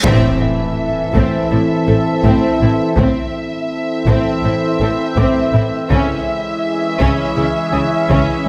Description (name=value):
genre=cinematic, hybrid orchestral and electronic film score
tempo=82 BPM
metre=4/4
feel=straight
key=A harmonic minor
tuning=A4 = 440 Hz
part: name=warm symphonic violin section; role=melody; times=0.0-8.5 s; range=E5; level=-27 LUFS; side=equal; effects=none
part: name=warm symphonic violin section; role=second line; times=0.0-8.5 s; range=C4 to A4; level=-26 LUFS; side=equal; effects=none
part: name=warm symphonic viola section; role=accompaniment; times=0.0-8.5 s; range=C4 to C#4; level=-26 LUFS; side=equal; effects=none
part: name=analog drone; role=sustained chords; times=0.2-8.5 s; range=E3 to E5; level=-22 LUFS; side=equal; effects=chorus
part: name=mellow French horn section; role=sustained chords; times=0.0-8.5 s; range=G#3 to E4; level=-25 LUFS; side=equal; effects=none
part: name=tight sequenced synth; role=arpeggios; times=0.0-8.5 s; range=C#3 to A4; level=-28 LUFS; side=equal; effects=none
part: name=rich studio double bass section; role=bass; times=0.0-8.5 s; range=A1 to C#2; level=-22 LUFS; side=equal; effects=none
part: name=rich symphonic cello section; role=bass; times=0.0-8.5 s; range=A2 to C#3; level=-23 LUFS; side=equal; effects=none
part: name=taiko ensemble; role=drums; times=0.0-8.5 s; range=none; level=-23 LUFS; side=equal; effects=none
part: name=reverse cymbal and impact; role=sound effects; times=0.0-3.0 s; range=none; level=-28 LUFS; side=equal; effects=none
part: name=clear grand piano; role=texture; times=0.0-8.5 s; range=E4 to D#6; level=-36 LUFS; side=equal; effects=none
room=light reverb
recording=close, detailed microphones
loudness=-16 LUFS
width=mono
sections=0.0-8.5 A section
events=band accent 0.0-0.8; impact 0.0-3.0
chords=0.0 Am; 5.9 C#m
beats=| 0.05 0.78 1.51 2.24 | 2.98 3.71 4.44 5.17 | 5.90 6.63 7.37 8.10